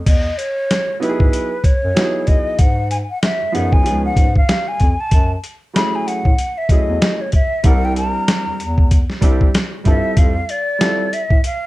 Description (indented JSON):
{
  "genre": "hip hop, jazz-hop",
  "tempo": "95 BPM",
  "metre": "4/4",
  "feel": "swing 60% on 16ths",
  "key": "unclear",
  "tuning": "A4 = 435 Hz",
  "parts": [
    { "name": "warm baby grand piano", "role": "accompaniment", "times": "0.0-11.1 s", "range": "F3 to Bb4", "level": "-22 LUFS", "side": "right 2 dB", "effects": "none" },
    { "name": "breathy mellow silver concert flute", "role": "melody", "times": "0.1-11.7 s", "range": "B4 to B5", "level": "-21 LUFS", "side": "left 1 dB", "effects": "slapback echo" },
    { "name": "dark bass clarinet", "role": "bass", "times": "0.1-11.4 s", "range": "C2 to A2", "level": "-21 LUFS", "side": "equal", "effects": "none" },
    { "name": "boom bap sampler-style drum kit", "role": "drums", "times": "0.1-11.6 s", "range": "crash cymbal, hi-hat, kick drum, snare drum", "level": "-15 LUFS", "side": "equal", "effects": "none" }
  ],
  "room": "light reverb",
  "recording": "dark, warm production",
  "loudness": "-14 LUFS",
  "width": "side -18 dB against mid",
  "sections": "0.1-11.7 A section",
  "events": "flute solo 0.1-11.7",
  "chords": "0.1 Emaj7; 2.6 G#m7; 3.9 C#7; 5.1 F#m7; 7.6 C7; 10.2 Fmaj7"
}